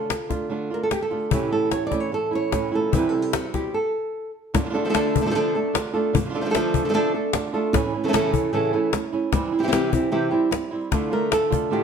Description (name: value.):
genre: flamenco.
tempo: 150 BPM.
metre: 4/4.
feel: straight.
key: unclear.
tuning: A4 = 439 Hz.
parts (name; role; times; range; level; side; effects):
flamenco guitar; melody; 0.0-11.8 s; A2 to D5; -22 LUFS; right 1 dB; slapback echo.
flamenco guitar; stabs; 0.0-11.8 s; A2 to F4; -27 LUFS; right 5 dB; none.
cajon; percussion; 0.1-11.7 s; none; -25 LUFS; left 6 dB; none.
room: moderate stone room reverb, RT60 1.2 s.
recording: none.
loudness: -20 LUFS.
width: side -6 dB against mid.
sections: 0.0-4.5 A section; 4.5-10.9 B section.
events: stop 3.7-4.5.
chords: 0.0 Dm; 1.3 A; 2.9 C; 3.7 N.C.; 4.5 Dm; 7.7 A; 9.3 C; 10.9 Dm.